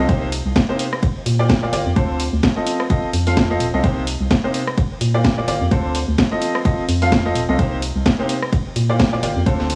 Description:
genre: piano house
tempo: 128 BPM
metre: 4/4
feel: swing 57% on 16ths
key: F mixolydian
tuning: A4 = 440 Hz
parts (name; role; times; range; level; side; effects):
- clear upright piano; riff; 0.0-9.7 s; Bb2 to F5; -24 LUFS; equal; sidechain pumping, tape echo
- organ-like FM bass; bass; 0.0-9.8 s; Eb1 to Bb2; -23 LUFS; equal; sidechain pumping
- electronic kick drum; drums; 0.1-9.6 s; none; -22 LUFS; equal; none
- house drum kit; drums; 0.1-9.8 s; hi-hat, ride cymbal, rim click, snare drum; -24 LUFS; equal; none
room: light reverb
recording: dry, gritty hardware recording, cassette tape, small room ambience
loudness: -19 LUFS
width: mono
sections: 0.0-9.8 A section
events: none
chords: 0.1 Cm7; 1.0 Bb6; 2.0 Dm7; 2.7 F7; 3.8 Cm7; 4.8 Bb6; 5.7 Dm7; 6.4 F7; 7.6 Cm7; 8.5 Bb6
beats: | 0.09 0.56 1.03 1.50 | 1.96 2.43 2.90 3.37 | 3.84 4.31 4.78 5.25 | 5.71 6.18 6.65 7.12 | 7.59 8.06 8.53 8.99 | 9.46

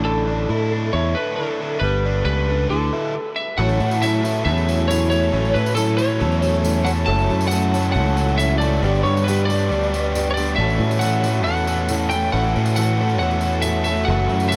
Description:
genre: folk rock and heartland rock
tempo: 137 BPM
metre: 4/4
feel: straight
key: A mixolydian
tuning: A4 = 440 Hz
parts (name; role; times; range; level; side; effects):
- lightly driven lead guitar; melody; 0.0-14.6 s; A4 to A5; -25 LUFS; equal; lush chorus, delay
- picked plugged-in steel-string acoustic guitar; accompaniment; 0.0-14.6 s; F#2 to A4; -29 LUFS; equal; none
- biting overdriven guitar; riff; 0.0-14.6 s; F#2 to A4; -28 LUFS; equal; none
- fingered electric bass; bass; 0.0-14.6 s; F#1 to A2; -23 LUFS; equal; none
- reed electric piano; accompaniment; 3.6-14.6 s; F#4 to E5; -36 LUFS; equal; none
- mellow tonewheel organ; sustained chords; 3.6-14.6 s; D4 to D5; -36 LUFS; equal; none
- tambourine; percussion; 3.7-14.6 s; none; -38 LUFS; equal; none
room: moderate huge ambient reverb, RT60 6.1 s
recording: dreamy mix soaked in reverb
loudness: -20 LUFS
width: mono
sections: 0.0-3.6 A section; 3.6-14.6 B section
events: stop 3.1-3.6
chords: 0.0 Asus4; 1.8 Gadd9; 2.7 Dadd9; 3.6 A6; 7.1 F#m7; 8.8 G; 10.6 A6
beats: | 0.06 0.50 0.94 1.38 | 1.82 2.26 2.70 3.14 | 3.58 4.02 4.45 4.89 | 5.33 5.77 6.21 6.64 | 7.08 7.52 7.96 8.39 | 8.83 9.27 9.71 10.14 | 10.58 11.02 11.46 11.89 | 12.33 12.77 13.21 13.64 | 14.08 14.52

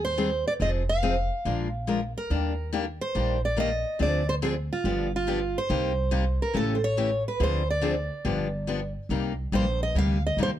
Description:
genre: acoustic string swing (jazz manouche)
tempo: 141 BPM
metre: 4/4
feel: swing 65% on 8ths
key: C minor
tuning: A4 = 440 Hz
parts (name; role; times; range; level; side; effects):
- picked steel-string acoustic guitar; melody; 0.0-10.5 s; F4 to F5; -28 LUFS; right 2 dB; none
- upright bass; bass; 0.0-10.6 s; F1 to Eb2; -29 LUFS; equal; none
- picked steel-string acoustic guitar; accompaniment; 0.2-10.5 s; C3 to Bb4; -28 LUFS; left 4 dB; none
room: little or no reverb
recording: dark, warm production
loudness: -24 LUFS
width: side -11 dB against mid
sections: 0.0-9.1 A section; 9.1-10.6 B section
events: none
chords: 0.0 Abmaj7; 0.6 Fm7; 1.4 Bb7; 2.3 Ebmaj7; 4.0 Dm7b5; 4.8 G7; 5.7 Cm7; 6.5 A7; 7.4 Dm7b5; 8.2 G7; 9.1 Cm7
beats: 0.17 | 0.60 1.02 1.45 1.87 | 2.30 2.72 3.15 3.57 | 4.00 4.42 4.85 5.27 | 5.70 6.12 6.55 6.97 | 7.40 7.82 8.25 8.67 | 9.10 9.52 9.95 10.37

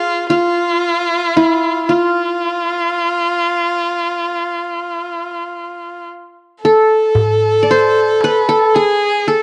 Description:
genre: Arabic maqam ensemble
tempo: 114 BPM (eighths)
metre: 10/8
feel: straight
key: unclear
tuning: A4 = 438 Hz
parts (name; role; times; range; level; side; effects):
- qanun; melody; 0.0-9.4 s; E4 to D5; -16 LUFS; equal; none
- dark violin; second line; 0.0-9.4 s; F4 to A4; -19 LUFS; equal; none
- darbuka; percussion; 7.1-8.9 s; none; -22 LUFS; equal; none
room: moderate spring reverb, RT60 1.4 s, small room ambience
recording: nothing above 10.7 kHz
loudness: -15 LUFS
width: mono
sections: 0.0-9.4 A section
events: none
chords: none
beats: 0.30 0.83 1.36 | 1.89 2.41 2.94 3.47 3.99 4.52 5.05 5.58 6.10 6.63 | 7.16 7.68 8.21 8.74 9.27

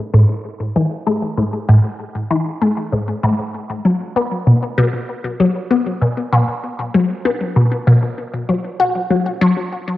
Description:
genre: ambient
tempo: 97 BPM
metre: 4/4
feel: straight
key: unclear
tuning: A4 = 435 Hz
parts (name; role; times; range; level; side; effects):
- resonant blip pluck; solo; 0.1-9.5 s; A2 to F#4; -15 LUFS; left 1 dB; phaser, wide subtle chorus, tape echo
room: wet spring reverb, RT60 2.3 s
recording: home recording on cassette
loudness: -15 LUFS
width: side -15 dB against mid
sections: 0.0-10.0 A section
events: none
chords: none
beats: 0.14 0.76 | 1.38 1.99 2.61 3.23 | 3.85 4.47 5.09 5.70 | 6.32 6.94 7.56 8.18 | 8.80 9.42

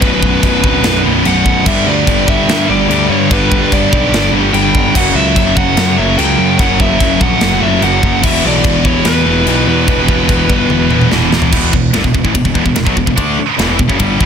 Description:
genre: heavy metal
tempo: 146 BPM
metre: 4/4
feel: straight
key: unclear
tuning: A4 = 439 Hz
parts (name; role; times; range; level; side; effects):
- high-gain lead guitar; melody; 0.0-11.1 s; B4 to G5; -17 LUFS; right 1 dB; distortion, digital delay
- bright chamber string section; sustained chords; 0.0-11.5 s; C#3 to B4; -27 LUFS; left 2 dB; none
- heavy high-gain guitar; riff; 0.0-14.3 s; B1 to D4; -16 LUFS; right 13 dB; distortion
- high-gain distorted guitar; riff; 0.0-14.3 s; B1 to D4; -16 LUFS; left 12 dB; distortion
- high-gain distorted guitar; riff; 0.0-11.5 s; B1 to G3; -19 LUFS; right 1 dB; distortion
- fuzz picked electric bass; bass; 0.0-14.3 s; B0 to G2; -17 LUFS; equal; overdrive
- tight metal drum kit; drums; 0.0-14.3 s; china cymbal, crash cymbal, kick drum, ride cymbal, snare drum, toms; -15 LUFS; equal; none
room: little or no reverb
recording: dense, heavily limited modern master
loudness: -9 LUFS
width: side -7 dB against mid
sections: 0.0-11.5 A section; 11.5-14.3 B section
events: half time 0.0-11.5; drum fill 10.7-11.5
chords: 0.0 Bm; 1.7 G; 4.9 F#; 8.2 Em; 11.5 E5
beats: | 0.01 0.42 0.84 1.25 | 1.66 2.07 2.48 2.89 | 3.30 3.71 4.12 4.53 | 4.95 5.36 5.77 6.18 | 6.59 7.00 7.41 7.82 | 8.23 8.64 9.05 9.46 | 9.88 10.29 10.70 11.11 | 11.52 11.94 12.35 12.76 | 13.17 13.59 14.00

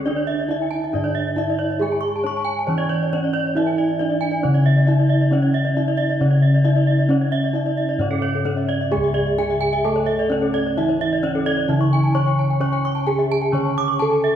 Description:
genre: Balinese gamelan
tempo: 134 BPM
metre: 4/4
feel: straight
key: C# pelog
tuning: A4 = 440 Hz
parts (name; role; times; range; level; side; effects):
- gamelan-type bronze metallophone; melody; 0.0-14.4 s; C#4 to C#5; -23 LUFS; right 1 dB; none
- gamelan-type bronze metallophone; accompaniment; 0.0-14.4 s; C#3 to C#4; -30 LUFS; right 3 dB; none
- gamelan-type bronze metallophone; arpeggios; 0.0-14.2 s; A4-20c to C#6; -26 LUFS; left 3 dB; none
- gamelan-type bossed gongs; bass; 0.0-14.4 s; C#2 to C#5; -20 LUFS; left 1 dB; none
- gamelan-type bronze metallophone; arpeggios; 0.2-14.3 s; A4-20c to D6+20c; -27 LUFS; right 5 dB; none
room: wet recital hall reverb, RT60 1.9 s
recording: heard from further back in the room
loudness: -17 LUFS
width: side -10 dB against mid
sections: 0.0-8.9 A section; 8.9-14.4 B section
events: none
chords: none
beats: | 0.06 0.49 0.93 1.37 | 1.81 2.25 2.69 3.12 | 3.56 4.00 4.44 4.88 | 5.32 5.75 6.20 6.64 | 7.09 7.54 8.00 8.45 | 8.91 9.38 9.84 10.30 | 10.76 11.22 11.69 12.15 | 12.61 13.07 13.53 13.99

